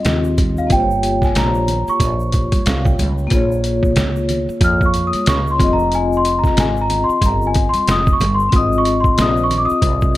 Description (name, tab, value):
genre	hip hop, jazz-hop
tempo	92 BPM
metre	4/4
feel	swing 59% on 16ths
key	F minor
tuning	A4 = 441 Hz
part	large celesta	melody	0.0-10.2 s	Eb5 to F6	-19 LUFS	equal	none
part	vibraphone with soft mallets	accompaniment	0.0-10.2 s	Bb3 to G5	-20 LUFS	left 3 dB	none
part	woody fretless electric bass	bass	0.0-10.2 s	F1 to F2	-20 LUFS	right 1 dB	analog chorus
part	trip hop sampler-style drum kit	drums	0.0-10.2 s	hi-hat, kick drum, snare drum	-18 LUFS	equal	none
part	tube shaker and congas	percussion	0.1-10.2 s	none	-30 LUFS	right 3 dB	none
room	small room ambience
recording	none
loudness	-14 LUFS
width	side -15 dB against mid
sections	0.0-10.2 A section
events	celesta solo 0.0-10.2; vibraphone fill 2.3-3.3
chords	0.0 Ab6; 0.7 Gm7b5; 3.3 Bbm7; 5.6 Fm7; 8.5 Ab6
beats	0.05 | 0.70 1.35 2.01 2.66 | 3.31 3.96 4.62 5.27 | 5.92 6.57 7.22 7.88 | 8.53 9.18 9.83